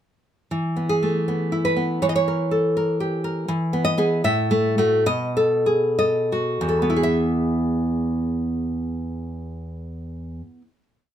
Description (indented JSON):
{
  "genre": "romantic piece for solo classical guitar",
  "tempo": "55-84 BPM",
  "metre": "2/4",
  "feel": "rubato",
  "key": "E major",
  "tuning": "A4 = 440 Hz",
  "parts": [
    { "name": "nylon-string guitar", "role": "solo", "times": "0.5-10.8 s", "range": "E2 to E5", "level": "-20 LUFS", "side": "equal", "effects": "none" }
  ],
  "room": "little or no reverb",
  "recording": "close, detailed microphones",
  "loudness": "-19 LUFS",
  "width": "side -10 dB against mid",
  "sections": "0.5-7.0 A section; 7.0-11.1 final chord",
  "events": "slowing down 2.8-7.0",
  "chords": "0.5 E; 2.0 Edim7; 3.5 E; 4.2 F#m/A; 5.1 B7; 7.0 E",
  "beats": "| 0.51 1.27 | 2.02 2.75 | 3.48 4.24 | 5.06 5.98 | 7.03 8.07 | 9.13 10.19"
}